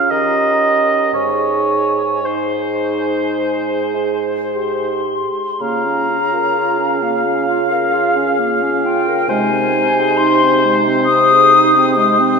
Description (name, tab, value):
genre	classical, slow romantic movement for wind quintet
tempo	48-69 BPM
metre	4/4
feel	rubato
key	Ab major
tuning	A4 = 440 Hz
part	hollow concert flute	melody	0.0-12.4 s	F5 to Eb6	-17 LUFS	left 4 dB	none
part	mellow oboe	second line	0.0-12.4 s	C5 to F5	-18 LUFS	right 1 dB	none
part	clear French horn	accompaniment	0.0-12.4 s	Db4 to Ab4	-24 LUFS	right 3 dB	none
part	warm clarinet	accompaniment	0.0-12.4 s	Ab3 to Bb4	-21 LUFS	right 4 dB	none
part	mellow bassoon	bass	0.0-12.4 s	Ab2 to Eb3	-22 LUFS	right 2 dB	none
room	wet church reverb, RT60 3.3 s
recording	recorded in a church or concert hall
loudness	-13 LUFS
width	side -5 dB against mid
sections	0.0-5.6 A section; 5.6-12.4 B section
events	none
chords	0.1 Eb7; 1.1 Ab; 5.6 Bbm/Db; 9.3 Ab/C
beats	0.11 | 1.14 2.24 3.35 4.55 | 5.62 6.56 7.48 8.39 | 9.29 10.19 11.08 11.97